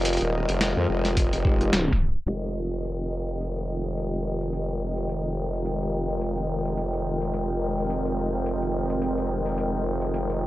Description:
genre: glitch hop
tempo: 107 BPM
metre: 4/4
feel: swing 57% on 16ths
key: F minor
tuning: A4 = 440 Hz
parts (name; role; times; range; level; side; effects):
- warbly tape-like pad; sustained chords; 0.0-10.5 s; Eb3 to G4; -32 LUFS; equal; chorus, built-in reverb, phaser, vintage 12-bit sampler grit, sidechain pumping
- formant-sweep wobble bass; bass; 0.0-10.5 s; Eb1 to F2; -28 LUFS; equal; chorus, overdrive
- boom bap sampler-style drum kit; drums; 0.0-10.4 s; hi-hat, snare drum; -28 LUFS; equal; none
- airy breathy pad; texture; 0.0-10.5 s; F4 to G5; -30 LUFS; equal; chorus, sidechain pumping
- electronic kick drum; drums; 1.2-2.0 s; none; -23 LUFS; equal; none
- bell-like tine electric piano; stabs; 1.4-2.3 s; Ab3 to G4; -31 LUFS; equal; sidechain pumping, analog delay
room: little or no reverb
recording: dry, gritty hardware recording, cassette tape, low-pass filter, tape stop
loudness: -24 LUFS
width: side -16 dB against mid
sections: 0.0-2.3 A section; 2.3-10.5 B section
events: tape stop 1.7-2.3; filter sweep on ambient pad 2.3-10.5; filter sweep 2.3-10.5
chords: 0.0 Fm9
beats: | 0.05 0.61 1.17 1.73 | 2.29 2.85 3.41 3.97 | 4.53 5.09 5.65 6.21 | 6.78 7.34 7.90 8.46 | 9.02 9.58 10.14

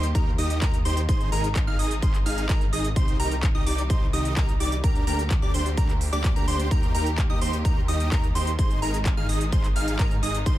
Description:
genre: EDM, festival progressive house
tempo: 128 BPM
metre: 4/4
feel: straight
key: unclear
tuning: A4 = 438 Hz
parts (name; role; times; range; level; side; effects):
- clear studio string section; sustained chords; 0.0-10.6 s; C3 to G4; -36 LUFS; equal; sidechain pumping
- plucky unison lead; arpeggios; 0.0-10.6 s; Bb5 to F6; -31 LUFS; equal; sidechain pumping, tape echo
- dense compressed supersaw; riff; 0.0-10.6 s; D4 to F5; -31 LUFS; equal; sidechain pumping, tape echo
- wide detuned saw bass; bass; 0.0-10.6 s; Ab1 to Ab2; -28 LUFS; equal; chorus, tube saturation, sidechain pumping
- big-room dance drum kit; drums; 0.0-10.6 s; handclaps, hi-hat; -34 LUFS; right 1 dB; none
- electronic kick drum; drums; 0.1-10.6 s; none; -23 LUFS; equal; none
room: little or no reverb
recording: none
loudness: -21 LUFS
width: side -14 dB against mid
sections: 0.0-10.6 A section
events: none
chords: 0.0 Eb; 1.1 Ab; 3.0 Cm; 4.8 Gm/D; 6.7 Eb; 8.6 Ab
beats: 0.15 0.62 | 1.09 1.56 2.02 2.49 | 2.96 3.43 3.90 4.37 | 4.84 5.31 5.78 6.24 | 6.71 7.18 7.65 8.12 | 8.59 9.06 9.53 9.99 | 10.46

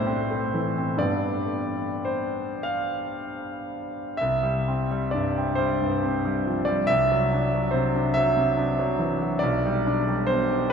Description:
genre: classical, romantic nocturne for solo piano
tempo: 34-49 BPM (dotted quarters)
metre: 6/8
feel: rubato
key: unclear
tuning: A4 = 441 Hz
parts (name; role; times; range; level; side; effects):
- clear concert grand piano; solo; 0.0-10.7 s; B1 to F5; -22 LUFS; equal; none
room: wet cathedral reverb, RT60 5.7 s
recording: in a vast, echoing space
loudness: -22 LUFS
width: side -6 dB against mid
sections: 0.0-10.7 A section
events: none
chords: 0.0 Am; 1.0 G; 4.2 C; 6.9 D7/C; 9.4 G/B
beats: | 0.99 2.65 | 4.20 5.58 | 6.89 8.15 | 9.41 10.72

